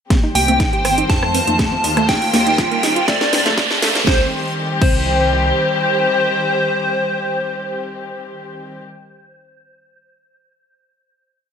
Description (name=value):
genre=progressive house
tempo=121 BPM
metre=4/4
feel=straight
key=C dorian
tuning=A4 = 442 Hz
part: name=dark studio string section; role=sustained chords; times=0.1-8.8 s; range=D3 to G4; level=-22 LUFS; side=left 3 dB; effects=sidechain pumping
part: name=wide unison pluck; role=arpeggios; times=0.1-5.0 s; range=A3 to G4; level=-23 LUFS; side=right 1 dB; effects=sidechain pumping, dub echo
part: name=electronic kick drum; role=drums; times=0.1-5.0 s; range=none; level=-17 LUFS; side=equal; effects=none
part: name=house drum kit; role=drums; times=0.1-5.0 s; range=crash cymbal, hi-hat, rim click, snare drum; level=-22 LUFS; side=right 1 dB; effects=none
part: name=congas and cowbell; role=percussion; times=0.1-3.6 s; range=none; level=-25 LUFS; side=right 2 dB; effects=sidechain pumping on perc
part: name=riser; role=sound effects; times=1.7-4.1 s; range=none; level=-23 LUFS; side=right 3 dB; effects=none
part: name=backwards swelling texture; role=texture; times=0.3-4.1 s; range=C5 to C6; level=-30 LUFS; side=right 3 dB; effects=built-in reverb, sidechain pumping
part: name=plucky unison lead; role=melody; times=0.4-8.8 s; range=C5 to A5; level=-20 LUFS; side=equal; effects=sidechain pumping, dub echo
part: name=soft synth bell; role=second line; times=0.4-9.5 s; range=C5 to A5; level=-26 LUFS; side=equal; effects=none
part: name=dark detuned saw bass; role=bass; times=0.4-5.5 s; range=Eb1 to F2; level=-24 LUFS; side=equal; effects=sidechain pumping
room=moderate recital hall reverb, RT60 1.6 s, digital ambience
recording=high-pass filter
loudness=-14 LUFS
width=side -7 dB against mid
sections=0.1-4.1 build; 4.1-8.0 final chord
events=build-up 0.1-4.1; drum fill 0.1-4.1; filter sweep on synth pluck 0.1-4.1; filter sweep 0.1-4.1; riser 1.7-4.1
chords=0.1 Cm; 1.1 F7; 2.1 Ebadd9; 3.1 Bbmaj7; 4.1 Cm